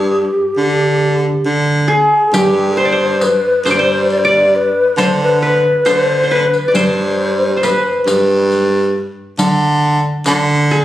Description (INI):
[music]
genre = Arabic maqam ensemble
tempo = 136 BPM (eighths)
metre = 10/8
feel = straight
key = G maqam hijaz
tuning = A4 = 440 Hz
[part]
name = breathy mellow ney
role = melody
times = 0.0-10.8 s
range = G4 to D5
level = -15 LUFS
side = left 2 dB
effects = none
[part]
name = qanun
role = second line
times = 0.0-10.8 s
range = G4 to D5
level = -16 LUFS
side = right 1 dB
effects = none
[part]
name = clear baritone saxophone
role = bass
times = 0.0-10.8 s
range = G2 to D3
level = -15 LUFS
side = right 1 dB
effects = none
[part]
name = riq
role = percussion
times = 2.3-10.8 s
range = none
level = -21 LUFS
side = left 1 dB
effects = none
[sound]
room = moderate recital hall reverb, RT60 1.5 s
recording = recorded on a phone in the room, club reverb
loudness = -11 LUFS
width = side -13 dB against mid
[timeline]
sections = 0.0-2.3 A section; 2.3-10.8 A section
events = none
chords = none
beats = 0.12 0.56 1.01 1.45 1.89 | 2.33 2.77 3.21 3.66 4.10 4.54 4.98 5.42 5.86 6.30 | 6.75 7.19 7.63 8.07 8.51 8.95 9.39 9.83 10.28 10.71